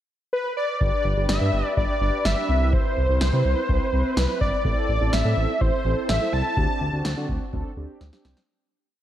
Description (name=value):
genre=synth-pop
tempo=125 BPM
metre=4/4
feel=straight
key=unclear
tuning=A4 = 439 Hz
part: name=wide unison lead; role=melody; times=0.3-7.3 s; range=B4 to A5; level=-25 LUFS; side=equal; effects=analog delay
part: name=mellow synth brass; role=accompaniment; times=0.8-8.4 s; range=C4 to C5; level=-29 LUFS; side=right 2 dB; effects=chorus
part: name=smooth synth bass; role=bass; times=0.8-8.3 s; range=G1 to D3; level=-24 LUFS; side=equal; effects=none
part: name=electro analog drum machine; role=drums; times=0.8-8.5 s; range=kick drum, snare drum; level=-27 LUFS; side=equal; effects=none
room=moderate lush hall reverb, RT60 2.3 s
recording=dreamy mix soaked in reverb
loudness=-20 LUFS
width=side -12 dB against mid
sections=0.0-0.8 pickup bar; 0.8-8.5 verse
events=fade-out 6.6-8.5; drum fill 8.0-8.5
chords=0.0 N.C.; 0.8 G; 2.5 Cmaj7; 4.6 Am; 6.6 D7sus4